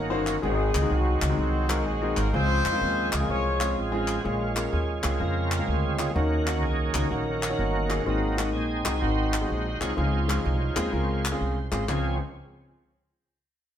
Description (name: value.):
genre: uptempo gospel.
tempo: 126 BPM.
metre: 4/4.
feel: swing 65% on 8ths.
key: Db major.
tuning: A4 = 438 Hz.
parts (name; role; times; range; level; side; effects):
clear horn section; melody; 0.0-4.2 s; Gb3 to Db5; -28 LUFS; left 2 dB; none.
bright tonewheel organ; sustained chords; 0.0-12.2 s; Db3 to Db5; -30 LUFS; right 3 dB; overdrive, chorus vibrato, slow rotary speaker.
upright bass; bass; 0.0-12.2 s; G1 to F2; -28 LUFS; equal; none.
warm concert grand piano; accompaniment; 0.1-12.2 s; Db2 to Db5; -30 LUFS; left 2 dB; none.
group handclap; percussion; 0.3-12.2 s; none; -33 LUFS; left 2 dB; none.
room: moderate stone room reverb, RT60 1.2 s.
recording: band playing live in one room.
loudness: -23 LUFS.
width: side -10 dB against mid.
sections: 0.0-4.2 A section; 4.2-11.9 B section; 11.9-13.8 C section.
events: tonewheel organ solo 4.2-11.9.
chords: 0.4 Ab7; 2.3 Dbmaj7; 4.2 Bbm7; 6.2 Ebm7; 8.1 Ab7; 10.0 Dbmaj7.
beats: | 0.43 0.91 1.38 1.86 | 2.34 2.81 3.29 3.77 | 4.25 4.72 5.20 5.68 | 6.16 6.63 7.11 7.59 | 8.07 8.54 9.02 9.50 | 9.98 10.45 10.93 11.41 | 11.89.